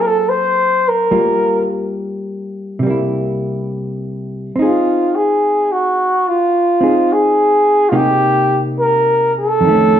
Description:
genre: jazz ballad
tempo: 70 BPM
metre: 4/4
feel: swing 69% on 8ths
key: unclear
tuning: A4 = 440 Hz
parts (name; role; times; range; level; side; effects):
- breathy flugelhorn; melody; 0.0-10.0 s; F4 to C5; -13 LUFS; equal; none
- hollow-body jazz guitar; accompaniment; 0.0-10.0 s; F2 to Ab4; -18 LUFS; equal; none
room: moderate large studio reverb, RT60 1.1 s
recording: band playing live in one room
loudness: -12 LUFS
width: side -10 dB against mid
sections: 0.0-10.0 A section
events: none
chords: 0.0 Gbmaj7#11; 1.1 Gm7; 2.8 C7; 4.5 Fm7; 7.9 Cm7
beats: 0.26 | 1.11 1.96 2.81 3.67 | 4.52 5.37 6.22 7.07 | 7.92 8.77 9.63

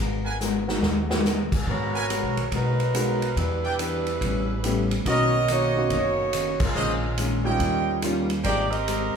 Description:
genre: jazz, big band swing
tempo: 142 BPM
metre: 4/4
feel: swing 65% on 8ths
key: G# minor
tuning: A4 = 440 Hz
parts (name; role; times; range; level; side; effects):
- hollow-body jazz guitar; accompaniment; 0.0-9.2 s; A2 to A#4; -30 LUFS; left 4 dB; none
- upright bass; bass; 0.0-9.1 s; F#1 to E2; -28 LUFS; equal; none
- brilliant trumpet section; stabs; 0.2-8.6 s; F#4 to G#5; -28 LUFS; right 4 dB; none
- swinging big-band drum kit; drums; 0.4-9.0 s; crash cymbal, hi-hat, kick drum, ride cymbal, snare drum; -29 LUFS; equal; none
- warm grand piano; accompaniment; 0.7-8.3 s; G3 to B4; -30 LUFS; equal; none
- warm saxophone section; melody; 1.7-9.2 s; F#3 to D#5; -27 LUFS; right 2 dB; none
room: wet large studio reverb, RT60 1.3 s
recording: band playing live in one room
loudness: -22 LUFS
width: side -6 dB against mid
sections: 0.0-1.7 A section; 1.7-9.2 A section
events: drum fill 0.4-1.3; band accent 6.5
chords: 0.0 G#m9; 3.4 Em7; 4.2 A9; 5.1 Bmaj9; 6.8 A#m11; 7.6 D#9; 8.4 G#maj9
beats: 0.41 0.83 1.25 | 1.68 2.10 2.52 2.95 | 3.37 3.79 4.21 4.64 | 5.06 5.49 5.91 6.33 | 6.75 7.18 7.60 8.03 | 8.45 8.87

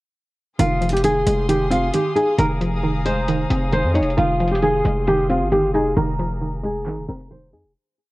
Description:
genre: hip hop, trap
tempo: 134 BPM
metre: 4/4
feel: half-time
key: F minor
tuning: A4 = 440 Hz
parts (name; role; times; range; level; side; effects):
- flamenco guitar; melody; 0.6-7.7 s; F4 to Db5; -20 LUFS; equal; low-pass filter, digital delay
- hollow square pluck; accompaniment; 0.6-7.8 s; Eb3 to Eb4; -24 LUFS; right 1 dB; chorus, low-pass filter
- warm studio string section; sustained chords; 0.6-7.7 s; Ab4 to Eb6; -32 LUFS; left 2 dB; none
- distorted 808-style bass; bass; 0.6-7.8 s; F1 to F2; -23 LUFS; equal; distortion
- trap drum kit; drums; 0.6-7.8 s; handclaps, hi-hat; -34 LUFS; right 1 dB; none
room: studio reverb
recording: worn, warbling old tape, cassette tape, warbly pitch drift, low-pass filter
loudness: -17 LUFS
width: side -20 dB against mid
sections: 0.6-7.8 breakdown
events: filter sweep 0.6-7.8; fade-out 6.0-7.8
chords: 0.6 Fm7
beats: | 0.59 1.04 1.49 1.94 | 2.38 2.83 3.28 3.73 | 4.17 4.62 5.07 5.52 | 5.97 6.41 6.86 7.31

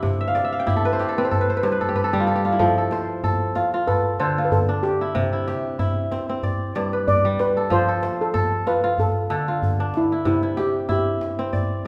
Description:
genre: west african traditional, West African string and xylophone music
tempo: 94 BPM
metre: 4/4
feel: swing 56% on 16ths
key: unclear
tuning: A4 = 439 Hz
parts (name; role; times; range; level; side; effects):
- steel pan; melody; 0.0-11.9 s; E4 to D5; -26 LUFS; equal; none
- kora; arpeggios; 0.0-11.9 s; G2 to G5; -24 LUFS; equal; none
- djembe; percussion; 0.0-11.7 s; none; -28 LUFS; equal; none
room: wet recital hall reverb, RT60 1.8 s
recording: none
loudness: -22 LUFS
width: mono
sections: 0.0-11.9 A section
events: kora fill 0.2-2.6; drum fill 1.8-2.6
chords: 0.0 C; 1.3 N.C.; 2.6 F; 3.9 Dm; 5.1 C; 6.4 G; 7.7 F; 9.0 Dm; 10.3 C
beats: | 0.03 0.67 1.31 1.95 | 2.59 3.23 3.87 4.51 | 5.15 5.79 6.43 7.07 | 7.70 8.34 8.98 9.62 | 10.26 10.90 11.54

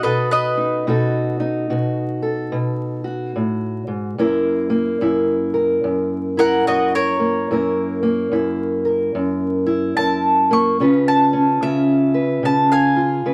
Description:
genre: acoustic country blues, solo or duo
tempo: 73 BPM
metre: 4/4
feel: swing 62% on 8ths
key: F# mixolydian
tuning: A4 = 440 Hz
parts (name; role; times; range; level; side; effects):
- mandolin; melody; 0.0-13.3 s; F#4 to C#6; -21 LUFS; equal; none
- fingerpicked steel-string acoustic guitar; accompaniment; 0.0-13.3 s; F#2 to B4; -20 LUFS; equal; none
room: small room ambience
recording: dry, close 1970s-style studio recording, vinyl crackle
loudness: -19 LUFS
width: mono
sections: 0.0-13.3 A section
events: mandolin solo 0.0-13.3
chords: 0.0 B7; 4.2 F#7; 10.8 C#7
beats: 0.04 | 0.87 1.70 2.53 3.35 | 4.18 5.01 5.83 6.66 | 7.49 8.31 9.14 9.96 | 10.79 11.61 12.43 13.26

